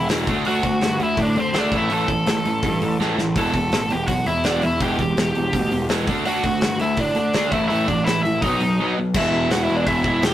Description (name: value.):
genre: punk rock.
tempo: 166 BPM.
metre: 4/4.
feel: straight.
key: E minor.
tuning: A4 = 440 Hz.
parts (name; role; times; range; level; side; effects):
biting lead guitar; melody; 0.0-10.3 s; C4 to A5; -22 LUFS; equal; overdrive.
cranked stack guitar; riff; 0.0-10.3 s; E2 to D4; -26 LUFS; right 5 dB; overdrive.
crunchy overdriven guitar; riff; 0.0-10.3 s; E2 to D4; -27 LUFS; left 4 dB; none.
fuzz picked electric bass; bass; 0.0-10.3 s; E1 to D3; -24 LUFS; equal; overdrive.
loose indie drum kit; drums; 0.1-10.3 s; crash cymbal, hi-hat, kick drum, snare drum; -25 LUFS; left 1 dB; none.
room: light reverb.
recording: rough rehearsal-room recording, tube saturation.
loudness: -18 LUFS.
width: side -12 dB against mid.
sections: 0.0-9.1 A section; 9.1-10.3 B section.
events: drum fill 3.0-3.4; break 8.8-9.1.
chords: 0.3 D; 1.7 A5; 3.4 Em; 6.1 D; 7.5 A5; 8.4 B; 9.1 E5.